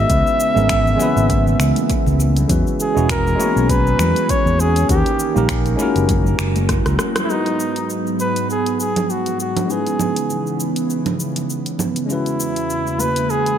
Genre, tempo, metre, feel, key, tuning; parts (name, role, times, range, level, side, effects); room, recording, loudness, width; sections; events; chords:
sunset chillout; 100 BPM; 4/4; swing 56% on 16ths; G# minor; A4 = 444 Hz
mellow flugelhorn; melody; 0.0-13.6 s; D#4 to E5; -21 LUFS; equal; analog delay
mellow tine electric piano; accompaniment; 0.0-13.6 s; G#3 to B4; -22 LUFS; moving between left 4 dB and right 6 dB; auto-pan, low-pass filter, analog delay
airy breathy pad; sustained chords; 0.0-13.6 s; E2 to A#4; -24 LUFS; right 2 dB; chorus
fingered electric bass; bass; 0.0-7.0 s; E1 to E2; -18 LUFS; equal
deep house drum kit; drums; 0.1-13.6 s; cabasa, congas, finger snaps, hi-hat, rim click; -25 LUFS; right 2 dB; tape echo
electronic kick drum; drums; 0.1-6.8 s; -22 LUFS; equal
congas; percussion; 0.6-7.3, 12.9-13.1 s; -28 LUFS; left 3 dB
moderate plate reverb, RT60 2.2 s; echo-heavy mix; -15 LUFS; side -9 dB against mid
0.0-7.3 A section; 7.3-13.6 B section
drum fill 6.7-7.3; band accent 7.1
0.1 C#m7; 2.5 E6; 4.9 D#7; 6.1 F#7; 7.3 G#m7; 9.7 C#m7; 12.1 E6